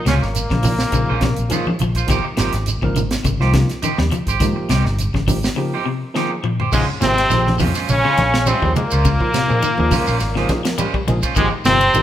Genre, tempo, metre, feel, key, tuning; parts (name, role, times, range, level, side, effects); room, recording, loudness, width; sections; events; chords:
afrobeat; 104 BPM; 4/4; swing 54% on 16ths; Bb dorian; A4 = 441 Hz
trombone with straight mute; melody; 0.0-1.8, 6.7-12.0 s; Ab3 to Db4; -19 LUFS; equal
bright trombone section; second line; 0.0-1.8, 6.7-12.0 s; Ab2 to Db3; -28 LUFS; left 2 dB
raspy tenor saxophone; second line; 0.0-1.8, 6.7-12.0 s; Ab3 to Db4; -29 LUFS; right 2 dB
barky tine electric piano; accompaniment; 0.0-12.0 s; F3 to Bb4; -27 LUFS; right 2 dB; overdrive
electric guitar at the edge of break-up; arpeggios; 0.1-12.0 s; C3 to Ab3; -25 LUFS; left 5 dB
electric guitar at the edge of break-up; stabs; 0.1-11.8 s; Ab3 to C5; -26 LUFS; right 6 dB; spring reverb
fingered electric bass; bass; 0.1-12.0 s; G1 to Bb2; -20 LUFS; equal
tight funk drum kit; drums; 0.1-12.0 s; crash cymbal, hi-hat, kick drum, ride cymbal, snare drum, toms; -24 LUFS; equal
shekere; percussion; 0.1-12.0 s; -28 LUFS; right 5 dB
congas; percussion; 0.4-12.0 s; -25 LUFS; right 2 dB
moderate stone room reverb, RT60 1.3 s; band playing live in one room; -15 LUFS; side -11 dB against mid
0.0-6.7 A section; 6.7-12.0 B section
break 5.6-6.7; drum fill 6.1-6.7
0.0 Bbm9; 2.1 Abmaj7; 6.7 Bbm9; 11.4 Abmaj7